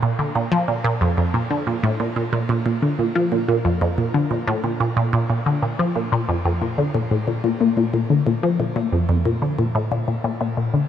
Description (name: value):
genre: ambient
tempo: 91 BPM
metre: 4/4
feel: straight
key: Bb major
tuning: A4 = 441 Hz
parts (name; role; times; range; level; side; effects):
- resonant blip pluck; solo; 0.0-10.8 s; F2 to F3; -18 LUFS; equal; chorus, phaser, tape echo
room: moderate shimmer reverb, RT60 8.0 s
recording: none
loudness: -18 LUFS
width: side -9 dB against mid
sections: 0.0-10.9 A section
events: none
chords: none